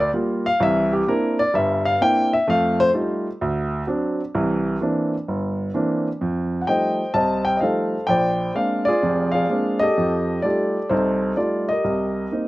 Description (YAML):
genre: solo jazz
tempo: 128 BPM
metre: 4/4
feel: swing 66% on 8ths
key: F mixolydian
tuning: A4 = 439 Hz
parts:
  - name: warm grand piano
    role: solo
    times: 0.0-12.5 s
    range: F1 to A5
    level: -19 LUFS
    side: equal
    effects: none
room: little or no reverb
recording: recorded outdoors, with no room sound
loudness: -19 LUFS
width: side -18 dB against mid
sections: 0.0-6.2 A section; 6.2-12.5 B section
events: grand piano solo 0.0-6.2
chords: 0.0 Gm7; 0.6 C9; 2.5 F9; 3.4 D7; 4.3 C9; 6.2 F9; 8.1 Bb9; 10.0 F9; 11.8 Cm7